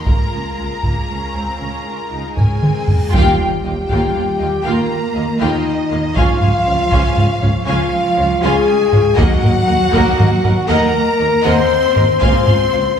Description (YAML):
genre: cinematic, epic orchestral film score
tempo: 79 BPM (dotted quarters)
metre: 12/8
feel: straight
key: unclear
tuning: A4 = 440 Hz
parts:
  - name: rich studio violin section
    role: melody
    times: 0.0-13.0 s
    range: Eb5 to C6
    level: -24 LUFS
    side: left 1 dB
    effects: none
  - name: rich symphonic violin section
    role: second line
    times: 0.0-12.8 s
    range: Ab4 to Ab5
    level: -25 LUFS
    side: left 3 dB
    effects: none
  - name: rich studio viola section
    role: accompaniment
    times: 0.1-12.8 s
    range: Ab3 to Bb4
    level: -23 LUFS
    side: right 1 dB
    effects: none
  - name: mellow French horn section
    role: sustained chords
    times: 0.1-13.0 s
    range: Ab3 to C5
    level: -18 LUFS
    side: left 3 dB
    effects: none
  - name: mellow tuba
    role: bass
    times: 0.1-12.8 s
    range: Db2 to Eb2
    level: -24 LUFS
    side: right 1 dB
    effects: none
  - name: rich symphonic cello section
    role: bass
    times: 0.1-13.0 s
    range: Db2 to C4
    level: -24 LUFS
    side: right 2 dB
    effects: none
  - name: rich symphonic double bass section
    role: bass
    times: 0.1-12.8 s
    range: Db2 to Eb2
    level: -25 LUFS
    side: right 2 dB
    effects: none
  - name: taiko ensemble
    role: drums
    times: 0.1-12.7 s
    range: none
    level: -16 LUFS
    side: right 1 dB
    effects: none
  - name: reverse cymbal and impact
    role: sound effects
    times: 2.9-6.2 s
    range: none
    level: -30 LUFS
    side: equal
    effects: none
room: wet recital hall reverb, RT60 1.3 s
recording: heard from further back in the room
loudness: -13 LUFS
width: side -8 dB against mid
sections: 0.0-3.1 A section; 3.1-13.0 A section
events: drum fill 2.4-3.1; reverse cymbal 2.9; band accent 3.1-3.7; impact 3.1-6.2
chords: 0.1 Bbm7/Db; 3.1 Ebadd9; 6.2 Db; 9.2 Ebm; 12.2 Bbm7/Db